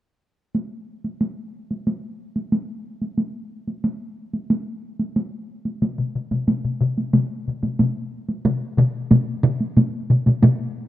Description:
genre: japanese traditional, taiko drum ensemble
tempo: 91 BPM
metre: 4/4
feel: straight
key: none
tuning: none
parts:
  - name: solo taiko drums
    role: percussion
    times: 0.5-10.6 s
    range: none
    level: -23 LUFS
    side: right 1 dB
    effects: none
  - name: taiko ensemble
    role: percussion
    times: 5.8-10.6 s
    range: none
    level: -23 LUFS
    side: left 4 dB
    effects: none
  - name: taiko ensemble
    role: percussion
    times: 8.5-10.6 s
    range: none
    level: -19 LUFS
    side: right 2 dB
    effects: none
room: moderate plate reverb, RT60 2.2 s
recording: rough home demo mix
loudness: -20 LUFS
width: side -14 dB against mid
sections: 0.6-10.9 A section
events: none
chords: none

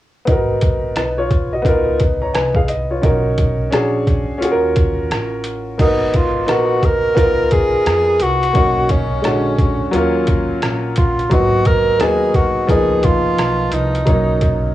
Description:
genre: hip hop, jazz-hop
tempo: 87 BPM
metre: 4/4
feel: swing 64% on 16ths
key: unclear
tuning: A4 = 440 Hz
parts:
  - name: warm upright piano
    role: accompaniment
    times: 0.2-14.7 s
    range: D3 to Bb5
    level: -18 LUFS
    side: equal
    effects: cassette tape
  - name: upright bass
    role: bass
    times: 0.3-14.7 s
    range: Ab1 to F2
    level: -23 LUFS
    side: equal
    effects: none
  - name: trip hop sampler-style drum kit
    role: drums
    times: 0.3-14.6 s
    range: crash cymbal, hi-hat, kick drum, rim click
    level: -18 LUFS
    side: equal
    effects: overdrive, cassette tape
  - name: breathy tenor saxophone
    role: melody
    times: 5.8-14.7 s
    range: C#4 to Bb4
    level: -17 LUFS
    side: right 1 dB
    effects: cassette tape, tape echo
room: light reverb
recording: home recording on cassette, small room ambience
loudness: -14 LUFS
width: side -14 dB against mid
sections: 0.3-5.8 A section; 5.8-14.7 B section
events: none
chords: 0.3 Abm9; 1.7 Db13; 3.0 Bmaj9; 3.7 Bb7alt; 4.4 Ebm9; 5.8 Abm9; 7.2 Db13; 8.6 Bmaj9; 9.2 Bb7alt; 9.9 Ebm9; 11.3 Abm9; 12.7 Db13; 14.1 Bmaj9

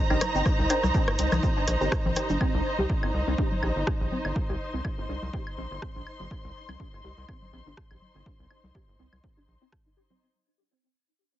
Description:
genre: minimal techno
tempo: 123 BPM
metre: 4/4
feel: swing 55% on 16ths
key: C minor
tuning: A4 = 440 Hz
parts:
  - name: dark studio string section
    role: texture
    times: 0.0-10.2 s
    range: Eb4 to C6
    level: -32 LUFS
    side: right 1 dB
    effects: sidechain pumping
  - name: resonant blip pluck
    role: riff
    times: 0.1-10.1 s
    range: C4 to G4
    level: -35 LUFS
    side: equal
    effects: phaser, ensemble chorus, sidechain pumping, digital delay
  - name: filtered dub chord stab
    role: stabs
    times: 0.1-2.3 s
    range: Eb4 to C5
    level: -33 LUFS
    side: left 1 dB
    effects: phaser, analog chorus, dub echo
  - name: rubbery square bass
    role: bass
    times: 0.1-9.6 s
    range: G1 to C2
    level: -30 LUFS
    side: equal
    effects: tube saturation, sidechain pumping
  - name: electronic woodblock, rim click and congas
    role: percussion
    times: 0.1-10.2 s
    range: none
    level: -32 LUFS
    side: left 2 dB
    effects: dub echo
  - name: punchy analog drum machine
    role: drums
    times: 0.2-9.8 s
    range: hi-hat, rim click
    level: -31 LUFS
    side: right 1 dB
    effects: none
  - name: egg shaker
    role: percussion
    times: 0.2-2.4 s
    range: none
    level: -46 LUFS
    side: right 5 dB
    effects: none
  - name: electronic kick drum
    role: drums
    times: 0.5-9.8 s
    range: none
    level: -29 LUFS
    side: equal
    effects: none
room: light reverb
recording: heavily compressed radio sound, nothing above 7.7 kHz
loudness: -24 LUFS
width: side -13 dB against mid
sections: 0.0-10.2 A section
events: fade-out 0.0-10.2; filter sweep on synth arpeggio sound 0.0-10.2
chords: 0.0 Cm7

